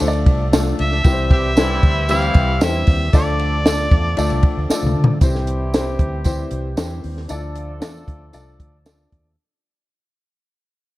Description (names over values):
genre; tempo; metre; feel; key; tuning
uptempo 1960s-style soul; 115 BPM; 4/4; straight; C major; A4 = 439 Hz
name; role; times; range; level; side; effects
warm upright piano; accompaniment; 0.0-9.3 s; E3 to D5; -24 LUFS; left 2 dB; none
percussive tonewheel organ; sustained chords; 0.0-9.4 s; E3 to A4; -32 LUFS; equal; none
vintage muted fingered electric bass; bass; 0.0-9.3 s; C2 to D3; -22 LUFS; equal; none
compact cocktail drum kit; drums; 0.0-9.2 s; hi-hat, kick drum, ride cymbal, snare drum, toms; -16 LUFS; equal; none
tambourine; percussion; 0.0-9.0 s; none; -34 LUFS; right 4 dB; none
mellow harmonica; melody; 0.8-4.7 s; D5 to F5; -22 LUFS; equal; slapback echo
warm horn section; second line; 1.3-9.1 s; E3 to A4; -28 LUFS; right 1 dB; none
room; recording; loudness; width
light reverb, studio reverb; dark, warm production; -15 LUFS; side -17 dB against mid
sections
0.0-5.2 A section; 5.2-9.4 B section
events
drum fill 4.7-5.2; fade-out 5.2-9.4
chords
0.0 Dm; 1.1 C; 3.1 Dm; 5.2 C; 7.3 Dm